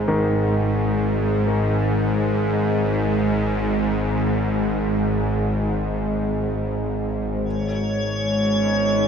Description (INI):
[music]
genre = dark ambient drone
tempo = free time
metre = none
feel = none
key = G# minor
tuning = A4 = 443 Hz
[part]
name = bowed-like drone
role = drone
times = 0.0-9.1 s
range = G#1 to G#2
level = -20 LUFS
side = equal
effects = built-in reverb
[part]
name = clear concert grand piano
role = arpeggios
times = 0.1-7.5 s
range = D#3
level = -29 LUFS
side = left 2 dB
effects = ping-pong delay, shimmer reverb
[part]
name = sweeping resonant pad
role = sustained chords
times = 7.4-9.1 s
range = G#3 to D#4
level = -31 LUFS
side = right 1 dB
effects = none
[part]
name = icy glass pad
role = texture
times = 7.6-9.1 s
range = C#5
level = -23 LUFS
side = left 3 dB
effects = chorus, built-in reverb
[sound]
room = moderate plate reverb, RT60 2.9 s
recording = dreamy mix soaked in reverb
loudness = -19 LUFS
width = side -7 dB against mid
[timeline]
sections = 0.0-7.5 A section; 7.5-9.1 B section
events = none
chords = 0.0 G#5; 7.5 G#m